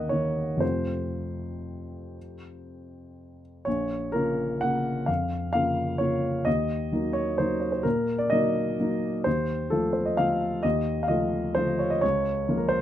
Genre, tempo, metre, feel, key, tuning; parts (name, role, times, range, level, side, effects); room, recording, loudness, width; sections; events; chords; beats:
classical, piano waltz; 114-136 BPM; 3/4; rubato; Bb minor; A4 = 441 Hz
warm upright piano; solo; 0.0-12.8 s; Bb1 to Gb5; -24 LUFS; equal
little or no reverb; close, detailed microphones; -24 LUFS; side -11 dB against mid
0.0-3.7 A section; 3.7-12.8 B section
0.0 Ebm; 0.6 F; 3.7 Bbm; 6.5 Ebm; 9.3 F7/Eb; 12.0 Bbm/Db
0.12 | 0.61 1.12 1.65 | 2.16 2.66 3.16 | 3.66 4.13 4.61 | 5.08 5.54 6.00 | 6.46 6.91 7.39 | 7.85 8.31 8.79 | 9.26 9.72 10.19 | 10.64 11.10 11.57 | 12.03 12.48